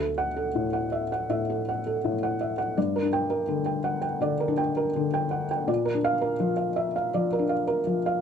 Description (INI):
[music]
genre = neoclassical minimalist piano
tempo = 82 BPM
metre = 4/4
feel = rubato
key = unclear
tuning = A4 = 442 Hz
[part]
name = felt-muted upright piano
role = solo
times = 0.0-8.2 s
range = D2 to G5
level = -24 LUFS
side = equal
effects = none
[sound]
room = light reverb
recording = close, detailed microphones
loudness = -24 LUFS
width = side -7 dB against mid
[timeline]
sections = 0.0-8.2 A section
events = none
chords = 0.0 Dadd9; 2.8 Gm; 5.7 Bb